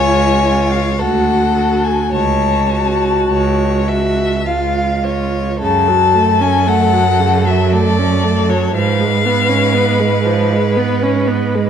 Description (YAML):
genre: classical, slow romantic movement for string quartet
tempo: 51-60 BPM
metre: 3/4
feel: rubato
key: F# minor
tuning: A4 = 440 Hz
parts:
  - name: rich violin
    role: melody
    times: 0.0-11.3 s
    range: C#5 to A5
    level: -18 LUFS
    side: left 8 dB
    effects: none
  - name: rich violin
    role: second line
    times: 0.0-11.7 s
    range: A4 to E#5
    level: -20 LUFS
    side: left 3 dB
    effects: none
  - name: rich viola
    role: accompaniment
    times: 0.0-11.7 s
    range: C#3 to F#4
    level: -18 LUFS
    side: right 2 dB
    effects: none
  - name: clear cello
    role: bass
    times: 0.0-11.7 s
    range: C#2 to G#2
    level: -16 LUFS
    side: right 4 dB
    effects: none
room: moderate recital hall reverb, RT60 1.6 s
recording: dark, warm production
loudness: -12 LUFS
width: side -8 dB against mid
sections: 0.0-5.6 A section; 5.6-11.7 B section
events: none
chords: 0.0 C#; 1.0 D; 2.1 F#m/C#; 4.5 C#; 5.6 F#m; 8.8 C#7/G#